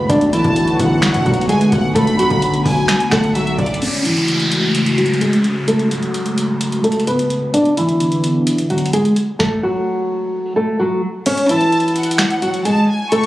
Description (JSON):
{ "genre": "hip hop, trap", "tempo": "129 BPM", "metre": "4/4", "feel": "half-time", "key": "F# minor", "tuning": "A4 = 442 Hz", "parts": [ { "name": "nylon-string guitar", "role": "melody", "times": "0.0-13.3 s", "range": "E3 to D5", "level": "-16 LUFS", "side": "equal", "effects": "low-pass filter" }, { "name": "clear studio violin section", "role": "second line", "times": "0.0-3.8, 11.5-13.3 s", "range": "D5 to C#6", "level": "-22 LUFS", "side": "equal", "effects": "tape echo" }, { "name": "dark analog pad", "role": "sustained chords", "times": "0.0-9.4 s", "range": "C#3 to F#4", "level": "-20 LUFS", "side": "left 1 dB", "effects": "chorus, low-pass filter" }, { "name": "distorted 808-style bass", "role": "bass", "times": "0.0-3.8 s", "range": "B1 to B2", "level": "-21 LUFS", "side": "equal", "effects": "distortion" }, { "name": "booming analog drum machine", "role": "drums", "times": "0.1-13.3 s", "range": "crash cymbal, finger snaps, hi-hat, kick drum, snare drum", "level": "-22 LUFS", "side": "equal", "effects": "none" }, { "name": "downlifter", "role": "sound effects", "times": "3.8-7.5 s", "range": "none", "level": "-22 LUFS", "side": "equal", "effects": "none" } ], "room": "little or no reverb", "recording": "recorded on a phone in the room, club reverb, compression", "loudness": "-14 LUFS", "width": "side -16 dB against mid", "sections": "0.0-3.8 A section; 3.8-11.3 B section; 11.3-13.3 C section", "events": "filter sweep 3.8-11.3; stop 9.4-11.3; kick muted 11.3-13.3", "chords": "0.1 Bm7; 3.8 F#madd9; 7.5 Bm7; 11.3 F#madd9" }